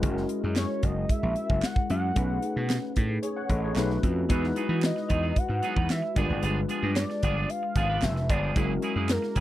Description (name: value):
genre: polished 1980s jazz-funk pop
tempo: 112 BPM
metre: 4/4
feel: straight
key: E major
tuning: A4 = 440 Hz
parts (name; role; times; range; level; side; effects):
- barky tine electric piano; accompaniment; 0.0-9.4 s; G#3 to F#5; -31 LUFS; left 2 dB; ensemble chorus
- gritty slap bass; bass; 0.0-9.4 s; F1 to E3; -28 LUFS; equal; overdrive
- crisp fusion drum kit; drums; 0.0-9.4 s; hi-hat, kick drum, snare drum; -28 LUFS; equal; none
- fat analog lead; melody; 0.6-9.4 s; A#4 to F#5; -32 LUFS; equal; chorus, slapback echo
- group handclap; percussion; 0.6-9.2 s; none; -40 LUFS; right 7 dB; none
- clean electric guitar; riff; 4.3-9.4 s; F3 to B4; -32 LUFS; right 5 dB; lush chorus
room: little or no reverb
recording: dry, close 1970s-style studio recording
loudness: -24 LUFS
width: side -14 dB against mid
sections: 0.0-9.4 A section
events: none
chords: 0.0 F#9; 2.2 B13; 3.8 B9; 4.3 Emaj9; 6.2 G7b9; 8.6 F#9